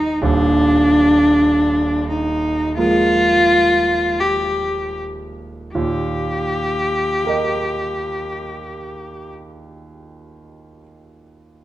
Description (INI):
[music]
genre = classical, romantic duo for cello and grand piano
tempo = 37-51 BPM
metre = 4/4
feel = rubato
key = Eb major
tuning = A4 = 440 Hz
[part]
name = warm cello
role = melody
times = 0.0-9.3 s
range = D4 to G4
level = -16 LUFS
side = left 1 dB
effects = none
[part]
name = warm grand piano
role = accompaniment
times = 0.0-11.6 s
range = Eb1 to Eb5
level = -22 LUFS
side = right 2 dB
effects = none
[sound]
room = wet recital hall reverb, RT60 1.5 s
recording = dark, warm production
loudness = -15 LUFS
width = side -14 dB against mid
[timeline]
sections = 0.0-5.7 A section; 5.7-11.6 B section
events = slowing down 0.0-5.7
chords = 0.2 Bb7/Eb; 5.7 Eb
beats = | 0.23 1.45 2.77 4.19 | 5.74 7.24 8.73 10.24